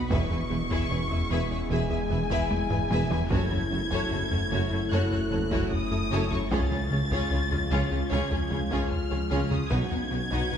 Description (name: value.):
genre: cinematic, hybrid orchestral and electronic film score.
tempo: 75 BPM.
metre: 4/4.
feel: straight.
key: F# dorian.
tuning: A4 = 439 Hz.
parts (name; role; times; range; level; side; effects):
rich symphonic violin section; melody; 0.0-10.6 s; G#5 to A6; -34 LUFS; left 3 dB; none.
metallic inharmonic drone; sustained chords; 0.0-10.6 s; F#3 to E5; -37 LUFS; right 1 dB; chorus, built-in reverb.
thumb-piano-like synth pluck; arpeggios; 0.0-10.6 s; C#3 to B4; -39 LUFS; right 4 dB; none.
round analog bass; riff; 0.0-10.6 s; C#2 to B3; -32 LUFS; left 2 dB; none.
dark detuned saw bass; bass; 0.0-10.6 s; E1 to C#2; -36 LUFS; equal; none.
warm symphonic violin section; second line; 0.1-10.6 s; G#4 to F#5; -36 LUFS; left 3 dB; none.
rich symphonic viola section; accompaniment; 0.1-10.6 s; C#4 to G#4; -36 LUFS; equal; none.
mellow French horn section; sustained chords; 0.1-10.6 s; F#3 to E#4; -35 LUFS; left 4 dB; none.
clear symphonic double bass section; bass; 0.1-10.6 s; E1 to C#2; -35 LUFS; right 4 dB; none.
dark tuba; bass; 0.1-10.6 s; E1 to C#2; -37 LUFS; right 4 dB; none.
rich symphonic cello section; bass; 0.1-10.6 s; E2 to C#3; -35 LUFS; right 2 dB; none.
taiko ensemble; drums; 0.1-10.6 s; none; -33 LUFS; equal; none.
room: moderate scoring stage reverb, RT60 1.6 s.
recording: dark, warm production.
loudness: -24 LUFS.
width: side -8 dB against mid.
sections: 0.0-10.6 A section.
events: drum fill 2.5-3.3.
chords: 0.1 E6; 3.3 F#m7; 6.5 C#; 9.7 B.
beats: | 0.11 0.91 1.71 2.51 | 3.31 4.11 4.91 5.71 | 6.51 7.31 8.11 8.91 | 9.71 10.51.